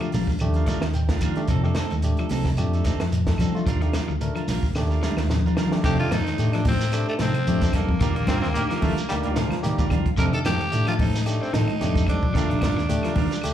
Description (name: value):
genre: afrobeat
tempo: 111 BPM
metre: 4/4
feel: swing 55% on 16ths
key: F mixolydian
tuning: A4 = 441 Hz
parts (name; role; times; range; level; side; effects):
- barky tine electric piano; accompaniment; 0.0-13.5 s; A3 to G5; -32 LUFS; left 1 dB; slapback echo
- electric guitar at the edge of break-up; arpeggios; 0.0-13.3 s; C3 to G3; -31 LUFS; left 7 dB; slapback echo
- clean electric guitar; stabs; 0.0-13.3 s; G3 to Bb4; -32 LUFS; right 9 dB; warbly pitch drift, slapback echo
- claves; percussion; 0.0-13.5 s; none; -42 LUFS; left 2 dB; none
- shekere; percussion; 0.0-13.5 s; none; -33 LUFS; right 2 dB; none
- fingered electric bass; bass; 0.1-13.5 s; Bb1 to F3; -24 LUFS; equal; none
- compact cocktail drum kit; drums; 0.1-13.5 s; crash cymbal, hi-hat, kick drum, snare drum; -26 LUFS; equal; none
- congas; percussion; 0.1-13.3 s; none; -30 LUFS; right 1 dB; slapback echo
- breathy tenor saxophone; melody; 5.8-13.5 s; A3 to Bb4; -28 LUFS; equal; slapback echo
- brilliant bass trombone; second line; 8.3-10.1 s; F3 to C4; -30 LUFS; left 2 dB; slapback echo
room: light reverb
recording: live gig heard through the venue's PA, club reverb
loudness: -20 LUFS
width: side -10 dB against mid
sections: 0.0-5.8 A section; 5.8-13.5 B section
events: tine electric piano fill 0.4-1.5; drum fill 4.8-5.8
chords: 0.0 Ebmaj9; 1.5 F7; 3.7 Ebmaj9; 5.8 F7; 8.0 Ebmaj9; 10.2 F7; 12.4 Ebmaj9